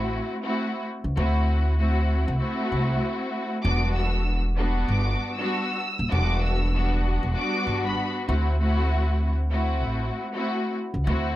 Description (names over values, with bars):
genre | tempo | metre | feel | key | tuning
hip hop, boom-bap hip-hop | 97 BPM | 4/4 | swing 58% on 16ths | unclear | A4 = 441 Hz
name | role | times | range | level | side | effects
warm symphonic string section | accompaniment | 0.0-11.4 s | G3 to F#4 | -27 LUFS | equal | high-pass filter, low-pass filter
upright bass | bass | 0.0-11.4 s | D#1 to D2 | -24 LUFS | equal | none
bright studio violin section | melody | 3.6-8.1 s | B5 to E6 | -30 LUFS | equal | high-pass filter, low-pass filter, slapback echo
room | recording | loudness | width
little or no reverb | none | -22 LUFS | side -15 dB against mid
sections
0.0-11.4 A section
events
none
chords
0.0 D7; 3.6 Em7; 8.3 D7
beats
0.55 | 1.17 1.79 2.41 3.03 | 3.65 4.26 4.88 5.50 | 6.12 6.74 7.36 7.98 | 8.60 9.21 9.83 10.45 | 11.07